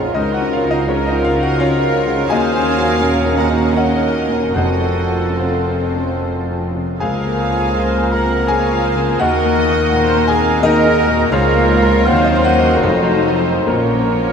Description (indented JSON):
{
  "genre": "classical",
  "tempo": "66-87 BPM",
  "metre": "3/4",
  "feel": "rubato",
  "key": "Bb minor",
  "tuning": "A4 = 441 Hz",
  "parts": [
    { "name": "clear baby grand piano", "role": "melody", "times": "0.0-14.3 s", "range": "Bb1 to Bb5", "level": "-18 LUFS", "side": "left 3 dB", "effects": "none" },
    { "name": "clear studio violin section", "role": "melody", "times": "0.0-14.3 s", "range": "Bb3 to Eb4", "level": "-27 LUFS", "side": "right 2 dB", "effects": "none" },
    { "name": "clear clarinet", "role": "second line", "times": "0.0-14.3 s", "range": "A4 to Eb5", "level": "-25 LUFS", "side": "left 1 dB", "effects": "none" },
    { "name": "mellow large flute ensemble", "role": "second line", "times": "0.0-14.3 s", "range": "A4 to Bb5", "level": "-25 LUFS", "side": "right 2 dB", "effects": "none" },
    { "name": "warm cor anglais", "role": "second line", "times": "0.0-14.3 s", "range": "A3 to Bb4", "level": "-27 LUFS", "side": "right 5 dB", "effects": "none" },
    { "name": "warm studio violin section", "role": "second line", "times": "0.0-14.3 s", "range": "F4 to Gb5", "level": "-26 LUFS", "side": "right 2 dB", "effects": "none" },
    { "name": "mellow bassoon", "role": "accompaniment", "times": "0.0-14.3 s", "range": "Eb3 to Gb3", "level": "-26 LUFS", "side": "left 5 dB", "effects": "none" },
    { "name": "warm studio viola section", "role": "accompaniment", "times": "0.0-14.3 s", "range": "Gb4 to Eb5", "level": "-26 LUFS", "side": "equal", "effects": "none" },
    { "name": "mellow French horn section", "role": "sustained chords", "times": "0.0-14.3 s", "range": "F3 to Gb4", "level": "-24 LUFS", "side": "right 1 dB", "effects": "none" },
    { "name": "dark trumpet section", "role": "stabs", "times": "0.0-14.3 s", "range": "A4 to C5", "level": "-24 LUFS", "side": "right 2 dB", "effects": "none" },
    { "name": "dark studio double bass section", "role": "bass", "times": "0.0-14.3 s", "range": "F1 to Eb2", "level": "-23 LUFS", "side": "right 1 dB", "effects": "none" },
    { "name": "warm studio cello section", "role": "bass", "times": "0.0-14.3 s", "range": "Db2 to Bb2", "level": "-24 LUFS", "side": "right 1 dB", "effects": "none" },
    { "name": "timpani", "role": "percussion", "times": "4.6-5.8, 13.7-14.3 s", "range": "F2 to Bb2", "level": "-28 LUFS", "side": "right 2 dB", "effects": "none" }
  ],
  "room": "wet huge ambient reverb, RT60 8.2 s",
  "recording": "in a vast, echoing space",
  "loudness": "-13 LUFS",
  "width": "side -6 dB against mid",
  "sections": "0.0-14.3 A section",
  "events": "timpani fill 13.7-14.3",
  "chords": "0.2 Bbm/Db; 2.3 Ebm7; 4.6 F; 7.0 Bbm/Db; 9.2 Ebm; 11.3 Bbm/Db; 12.1 Cdim/Eb; 12.8 F7b9; 13.7 Bbm"
}